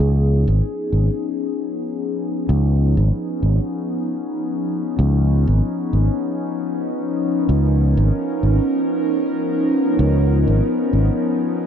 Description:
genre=ambient dub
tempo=96 BPM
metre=4/4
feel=swing 55% on 16ths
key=Db mixolydian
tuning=A4 = 440 Hz
part: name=warbly tape-like pad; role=sustained chords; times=0.0-11.7 s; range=F3 to Bb4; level=-20 LUFS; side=left 1 dB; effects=chorus, built-in reverb, phaser
part: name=fingered electric bass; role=bass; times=0.0-11.1 s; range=Ab1 to Db2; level=-15 LUFS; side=equal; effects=none
room=light reverb, digital ambience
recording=nothing above 10.9 kHz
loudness=-17 LUFS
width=side -8 dB against mid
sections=0.0-11.7 A section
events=none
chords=0.0 Db9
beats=0.62 1.24 1.87 | 2.49 3.12 3.74 4.37 | 4.99 5.62 6.24 6.87 | 7.49 8.12 8.74 9.37 | 9.99 10.62 11.24

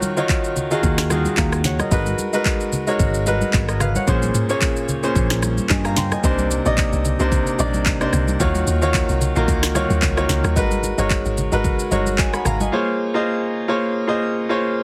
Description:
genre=amapiano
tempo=111 BPM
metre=4/4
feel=swing 55% on 16ths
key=unclear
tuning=A4 = 436 Hz
part: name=bright concert grand piano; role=accompaniment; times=0.0-14.8 s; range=Bb2 to C6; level=-23 LUFS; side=equal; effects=none
part: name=afro-pop drum kit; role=drums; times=0.0-12.7 s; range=handclaps, kick drum, rim click, shaker, snare drum, toms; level=-24 LUFS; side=equal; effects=none
part: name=congas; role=percussion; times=0.0-12.7 s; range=none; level=-31 LUFS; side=equal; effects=none
part: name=downlifter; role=sound effects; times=0.0-1.9 s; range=none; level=barely audible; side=none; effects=none
part: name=fingered electric bass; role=bass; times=0.8-6.1 s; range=Ab1 to G2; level=-24 LUFS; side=equal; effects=none
part: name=deep log drum bass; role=bass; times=6.2-12.7 s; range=G1 to Eb2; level=-24 LUFS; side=equal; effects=none
room=digital ambience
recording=heavily compressed radio sound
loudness=-20 LUFS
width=mono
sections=0.0-14.8 A section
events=none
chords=0.0 Ebm9; 1.9 Abm9; 4.1 Bbm9; 6.2 Cm9; 8.4 Ebm9; 10.6 Abm9; 12.7 Bbm9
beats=0.29 0.83 1.37 | 1.91 2.46 3.00 3.54 | 4.08 4.62 5.16 5.70 | 6.24 6.78 7.32 7.86 | 8.40 8.94 9.48 10.02 | 10.56 11.10 11.64 12.18 | 12.72 13.27 13.81 14.35

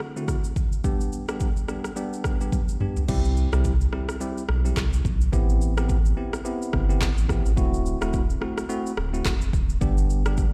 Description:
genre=afrobeats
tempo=107 BPM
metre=4/4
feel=swing 58% on 16ths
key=G major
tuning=A4 = 440 Hz
part: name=afro-pop drum kit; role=drums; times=0.0-10.5 s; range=crash cymbal, handclaps, kick drum, rim click, shaker, toms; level=-28 LUFS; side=equal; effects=none
part: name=bell-like tine electric piano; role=accompaniment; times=0.2-10.4 s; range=D3 to G4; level=-32 LUFS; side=equal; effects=none
part: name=sub bass with octave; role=bass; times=3.1-10.5 s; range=D1 to C2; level=-25 LUFS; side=equal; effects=none
room=little or no reverb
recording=played on a big sound system in a bare room, large studio reverb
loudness=-24 LUFS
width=mono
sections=0.0-3.1 A section; 3.1-10.5 B section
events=drum fill 2.5-3.1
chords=0.0 D7; 0.8 G; 3.1 C; 5.3 Am7; 7.6 D7; 9.8 G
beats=0.28 | 0.84 1.41 1.97 2.53 | 3.09 3.65 4.21 4.77 | 5.33 5.89 6.45 7.01 | 7.57 8.13 8.70 9.26 | 9.82 10.38

